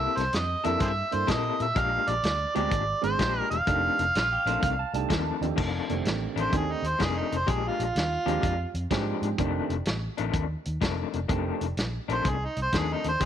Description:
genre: electric blues shuffle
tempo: 126 BPM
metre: 4/4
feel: swing 66% on 8ths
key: F mixolydian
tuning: A4 = 441 Hz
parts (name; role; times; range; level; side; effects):
- overdriven harmonica; melody; 0.0-8.7, 12.1-13.3 s; Eb4 to F5; -27 LUFS; right 2 dB; none
- electric guitar through a small old amp; riff; 0.0-13.3 s; F2 to A4; -32 LUFS; left 12 dB; tremolo
- vintage muted fingered electric bass; bass; 0.0-13.3 s; E1 to Bb2; -31 LUFS; equal; none
- warm soul drum kit; drums; 0.2-13.3 s; crash cymbal, hi-hat, kick drum, snare drum; -30 LUFS; equal; none
- dark upright piano; accompaniment; 0.6-11.6 s; F2 to A4; -33 LUFS; right 12 dB; none
- electric guitar through a small old amp; second line; 4.2-5.4 s; F4 to A5; -35 LUFS; right 12 dB; none
room: light reverb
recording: 1960s-style stereo with parts hard left and right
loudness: -25 LUFS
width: side -10 dB against mid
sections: 0.0-5.6 A section; 5.6-13.3 B section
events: harmonica solo 5.6-13.3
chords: 0.0 C13; 1.8 Bb13; 3.7 F13; 7.5 Bb13; 9.4 F13

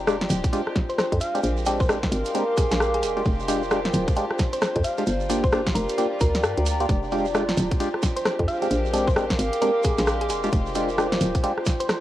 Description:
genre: UK garage, two-step garage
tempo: 132 BPM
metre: 4/4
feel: swing 61% on 16ths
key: F dorian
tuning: A4 = 439 Hz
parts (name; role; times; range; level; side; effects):
- warm studio violin section; sustained chords; 0.0-12.0 s; G3 to G4; -34 LUFS; equal; sidechain pumping, cassette tape
- hollow knocking FM bass; bass; 0.0-11.3 s; D1 to G2; -27 LUFS; equal; none
- warbly tape-like pad; texture; 0.0-12.0 s; F4 to D6; -28 LUFS; equal; chorus, built-in reverb, sidechain pumping, cassette tape
- percussive organ stab; stabs; 0.1-11.5 s; Ab3 to G4; -27 LUFS; equal; chorus, phaser, cassette tape, tape echo
- garage drum kit; drums; 0.1-12.0 s; hi-hat, rim click, snare drum; -26 LUFS; equal; cassette tape
- shekere; percussion; 0.1-12.0 s; none; -39 LUFS; right 10 dB; none
- electronic kick drum; drums; 0.4-11.8 s; none; -24 LUFS; equal; cassette tape
- thumb-piano-like synth pluck; melody; 0.9-12.0 s; Ab4 to F5; -29 LUFS; equal; chorus, cassette tape
room: moderate spring reverb, RT60 2.3 s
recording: home recording on cassette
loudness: -21 LUFS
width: side -13 dB against mid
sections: 0.0-12.0 A section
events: none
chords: 0.0 Fm69; 1.2 Bb13; 3.0 Fm69; 5.1 Gm7; 6.9 Fm69; 8.5 Bb13; 10.3 Fm69

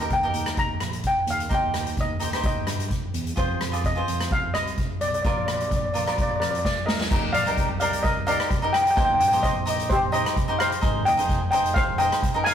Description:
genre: calypso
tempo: 129 BPM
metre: 4/4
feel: swing 54% on 16ths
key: Eb major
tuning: A4 = 440 Hz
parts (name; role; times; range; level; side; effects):
- steel pan; melody; 0.0-12.5 s; G4 to Bb5; -24 LUFS; left 1 dB; none
- cavaquinho; accompaniment; 0.0-12.5 s; Eb4 to Eb5; -28 LUFS; right 1 dB; none
- modern bright fingered electric bass; bass; 0.0-12.1 s; F1 to G2; -32 LUFS; right 1 dB; none
- street-band drum kit; drums; 0.1-12.5 s; crash cymbal, hi-hat, kick drum, rim click, snare drum; -26 LUFS; equal; none
room: wet stone room reverb, RT60 1.3 s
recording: rough rehearsal-room recording, warm saturation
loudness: -21 LUFS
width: side -9 dB against mid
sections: 0.0-7.1 A section; 7.1-12.5 B section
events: drum fill 6.6-7.1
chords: 0.0 Eb; 1.5 Cm/Eb; 3.4 Fm; 5.2 Bb; 7.1 Ebadd9; 10.8 Ab

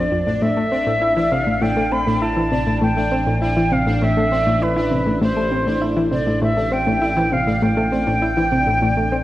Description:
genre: ambient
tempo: 100 BPM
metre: 4/4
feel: straight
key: A minor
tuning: A4 = 444 Hz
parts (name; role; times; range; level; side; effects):
- silver concert flute; melody; 0.0-9.2 s; B4 to B5; -20 LUFS; equal; tape echo
- analog pluck; riff; 0.0-9.2 s; F2 to E4; -20 LUFS; equal; chorus, tape echo
- analog drone; bass; 0.0-9.2 s; A1; -25 LUFS; equal; chorus, phaser
- pulsing gated texture; texture; 0.0-9.2 s; D4 to D5; -28 LUFS; equal; chorus, built-in reverb
room: wet concert hall reverb, RT60 2.2 s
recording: worn, warbling old tape, cassette tape, warbly pitch drift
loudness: -16 LUFS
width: side -15 dB against mid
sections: 0.0-9.2 A section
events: none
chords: 0.4 Am7

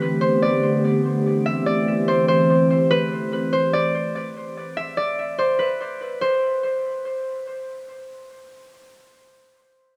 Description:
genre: hip hop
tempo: 145 BPM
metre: 4/4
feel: half-time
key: A minor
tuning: A4 = 441 Hz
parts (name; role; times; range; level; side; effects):
- concert harp; melody; 0.0-8.2 s; B4 to E5; -24 LUFS; equal; low-pass filter, dub echo
- warbly tape-like pad; sustained chords; 0.0-2.9 s; D3 to G4; -23 LUFS; equal; chorus, built-in reverb
room: light reverb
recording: echo-heavy mix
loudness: -21 LUFS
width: mono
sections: 0.0-6.2 A section; 6.2-9.5 B section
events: none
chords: 0.0 Gadd9; 1.2 Am7; 2.9 N.C.

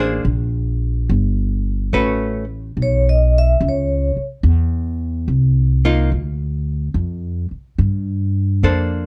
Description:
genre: jazz ballad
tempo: 72 BPM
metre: 4/4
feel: swing 67% on 8ths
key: unclear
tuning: A4 = 439 Hz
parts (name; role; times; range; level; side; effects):
- archtop guitar, miked and amplified; accompaniment; 0.0-9.1 s; A3 to B#4; -22 LUFS; equal; none
- upright bass; bass; 0.0-9.1 s; G1 to G2; -19 LUFS; equal; none
- vibraphone with medium mallets; melody; 2.8-4.2 s; C#5 to E5; -22 LUFS; equal; none
room: little or no reverb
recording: dark, warm production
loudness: -19 LUFS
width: mono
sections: 0.0-9.1 A section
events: vibraphone solo 0.0-9.1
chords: 0.2 Gm; 1.9 A69; 5.3 Cm11; 7.0 Fsus2

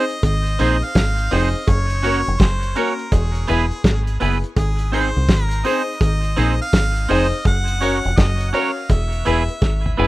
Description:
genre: roots reggae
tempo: 83 BPM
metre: 4/4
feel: swing 63% on 16ths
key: Ab mixolydian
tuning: A4 = 440 Hz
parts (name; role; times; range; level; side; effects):
- clear harmonica; melody; 0.0-10.0 s; Ab4 to Gb5; -26 LUFS; equal; tape echo
- clean electric guitar; accompaniment; 0.0-10.1 s; B3 to Db5; -24 LUFS; right 4 dB; warbly pitch drift, tape echo
- dark upright piano; stabs; 0.0-10.1 s; Bb3 to Db5; -24 LUFS; left 5 dB; none
- cloth-damped thuddy drum kit; drums; 0.1-10.0 s; hi-hat, kick drum, snare drum, toms; -16 LUFS; equal; none
- deep dub fingered electric bass; bass; 0.2-10.1 s; E1 to C2; -19 LUFS; equal; none
- cowbell; percussion; 0.2-9.8 s; none; -29 LUFS; right 2 dB; none
room: light reverb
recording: rough home demo mix, vinyl crackle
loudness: -16 LUFS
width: side -18 dB against mid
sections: 0.0-10.1 A section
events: drum fill 9.6-10.1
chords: 0.0 Ab; 1.7 Gb; 3.1 E; 4.6 Ab; 7.5 Gb; 8.9 E

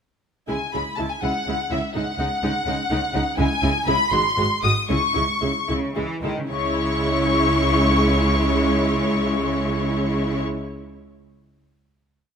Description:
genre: quick classical-period movement for string orchestra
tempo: 73-84 BPM (dotted quarters)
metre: 6/8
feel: rubato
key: C# minor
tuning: A4 = 439 Hz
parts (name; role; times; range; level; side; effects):
- warm studio violin section; melody; 0.5-10.4 s; E5 to D#6; -25 LUFS; left 2 dB; none
- clear studio violin section; second line; 0.5-10.4 s; C#5 to D#6; -28 LUFS; left 3 dB; none
- rich studio viola section; accompaniment; 0.5-10.4 s; G#3 to F#4; -25 LUFS; right 1 dB; none
- clear studio cello section; bass; 0.5-10.4 s; G#2 to E3; -26 LUFS; equal; none
- warm studio double bass section; bass; 0.5-10.4 s; G#1 to C#2; -26 LUFS; right 2 dB; none
room: moderate scoring stage reverb, RT60 1.6 s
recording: close, detailed microphones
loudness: -19 LUFS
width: side -7 dB against mid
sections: 0.5-6.5 A section; 6.5-9.6 final chord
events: slowing down 2.7-6.5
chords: 0.5 C#m; 2.0 G#5/C#; 3.4 C#m; 4.1 G#7; 4.9 C#m

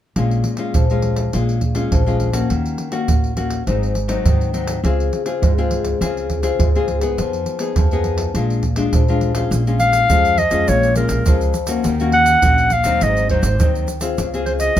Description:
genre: samba and choro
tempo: 103 BPM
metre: 4/4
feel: straight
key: Bb minor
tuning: A4 = 440 Hz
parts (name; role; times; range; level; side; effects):
- nylon-string guitar; accompaniment; 0.2-14.8 s; F2 to Ab4; -21 LUFS; left 4 dB; none
- upright bass; bass; 0.2-14.8 s; Ab1 to Ab2; -20 LUFS; equal; none
- surdo, pandeiro and tube shaker; percussion; 0.2-14.8 s; none; -20 LUFS; right 2 dB; none
- warm clarinet; melody; 9.8-14.8 s; Bb4 to Gb5; -16 LUFS; equal; none
room: light reverb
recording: none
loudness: -15 LUFS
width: side -11 dB against mid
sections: 0.2-9.5 A section; 9.5-14.8 B section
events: none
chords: 0.2 Bbm7; 2.5 Ebm7; 3.7 Ab7; 4.8 Dbmaj7; 7.2 Fm7b5; 8.3 Bb7; 9.5 Bbm7; 11.8 Ebm7; 13.0 Ab7; 14.2 Dbmaj7

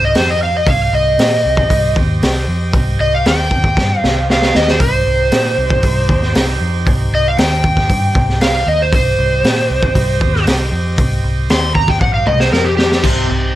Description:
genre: blues rock power trio and southern rock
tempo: 116 BPM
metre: 4/4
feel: straight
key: C minor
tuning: A4 = 436 Hz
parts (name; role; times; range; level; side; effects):
- overdriven slide guitar; melody; 0.0-13.0 s; G4 to C6; -16 LUFS; equal; tape echo
- overdriven tonewheel organ; sustained chords; 0.0-13.6 s; C4 to E5; -27 LUFS; right 5 dB; slow rotary speaker
- vintage muted fingered electric bass; bass; 0.0-13.5 s; Bb1 to Bb2; -18 LUFS; equal; none
- raw garage drum kit; drums; 0.1-13.2 s; crash cymbal, hi-hat, kick drum, snare drum, toms; -15 LUFS; equal; none
- overdriven semi-hollow guitar; riff; 13.0-13.5 s; C3 to C4; -20 LUFS; equal; none
room: light reverb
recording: lossy compression artefacts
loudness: -11 LUFS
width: side -14 dB against mid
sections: 0.0-13.0 A section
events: electric slide guitar solo 0.0-13.0; drum fill 3.8-4.8, 12.0-13.0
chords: 0.0 Cm

